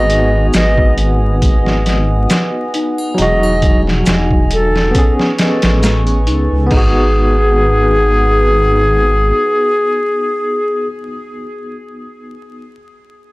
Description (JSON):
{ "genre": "trip hop", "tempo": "68 BPM", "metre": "4/4", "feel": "swing 54% on 16ths", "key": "G# minor", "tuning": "A4 = 440 Hz", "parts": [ { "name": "bright reedy baroque flute", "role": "melody", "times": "0.0-10.9 s", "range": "G#4 to D#5", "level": "-16 LUFS", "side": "equal", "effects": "tape echo" }, { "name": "bell-like tine electric piano", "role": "accompaniment", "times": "0.0-12.8 s", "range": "F#3 to G#4", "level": "-20 LUFS", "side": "equal", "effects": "tremolo, tape echo" }, { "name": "dark analog pad", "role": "sustained chords", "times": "0.0-10.8 s", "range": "D#4 to D#6", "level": "-23 LUFS", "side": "right 1 dB", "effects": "chorus" }, { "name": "large celesta", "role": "arpeggios", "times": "0.0-12.8 s", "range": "D#4 to G#5", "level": "-26 LUFS", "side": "left 2 dB", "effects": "vintage 12-bit sampler grit, tape echo" }, { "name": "dark detuned saw bass", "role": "bass", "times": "0.0-9.3 s", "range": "E1 to C#2", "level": "-14 LUFS", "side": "equal", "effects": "none" }, { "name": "trip hop sampler-style drum kit", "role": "drums", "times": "0.1-6.9 s", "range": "crash cymbal, hi-hat, kick drum, snare drum", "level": "-15 LUFS", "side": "equal", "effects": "none" }, { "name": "maracas and triangle", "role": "percussion", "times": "0.5-6.0 s", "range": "none", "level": "-33 LUFS", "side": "right 1 dB", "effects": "none" } ], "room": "little or no reverb", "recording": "dry, gritty hardware recording, vinyl crackle", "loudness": "-11 LUFS", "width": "side -22 dB against mid", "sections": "0.0-6.7 A section; 6.7-10.2 B section", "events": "none", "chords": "0.0 G#m7; 3.2 Emaj9; 5.0 Amaj9; 6.7 G#m7", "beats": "0.54 1.42 2.30 | 3.19 4.07 4.95 5.83 | 6.72 7.60 8.48 9.36" }